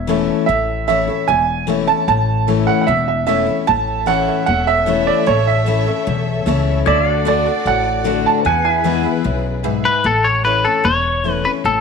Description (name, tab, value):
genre	honky-tonk and classic country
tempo	150 BPM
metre	4/4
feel	straight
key	A major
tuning	A4 = 440 Hz
part	bright upright piano	second line	0.0-9.0 s	C#5 to A5	-17 LUFS	right 8 dB	none
part	picked steel-string acoustic guitar	accompaniment	0.0-11.8 s	E2 to F#4	-20 LUFS	left 13 dB	none
part	pedal steel guitar	sustained chords	0.0-10.0 s	B4 to F#5	-26 LUFS	left 10 dB	wide subtle chorus
part	upright bass	bass	0.0-11.8 s	E1 to E2	-21 LUFS	left 1 dB	none
part	tack piano	accompaniment	0.1-11.6 s	E4 to A5	-27 LUFS	right 10 dB	none
part	dark chamber violin section	sustained chords	3.7-10.0 s	A3 to E5	-25 LUFS	left 3 dB	none
part	clean electric guitar	melody	9.9-11.8 s	A4 to C#5	-15 LUFS	left 3 dB	none
room	moderate echo chamber reverb, RT60 1.4 s, studio reverb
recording	1960s-style stereo with parts hard left and right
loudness	-14 LUFS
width	side -5 dB against mid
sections	0.0-10.1 A section; 10.1-11.8 B section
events	honky-tonk piano fill 0.0-0.5; upright piano solo 0.0-10.1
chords	0.0 A; 6.9 D; 8.5 E; 10.1 A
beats	0.08 | 0.48 0.88 1.28 1.68 | 2.08 2.48 2.88 3.28 | 3.67 4.07 4.47 4.87 | 5.27 5.67 6.07 6.46 | 6.86 7.26 7.66 8.06 | 8.46 8.86 9.26 9.65 | 10.05 10.45 10.85 11.25 | 11.65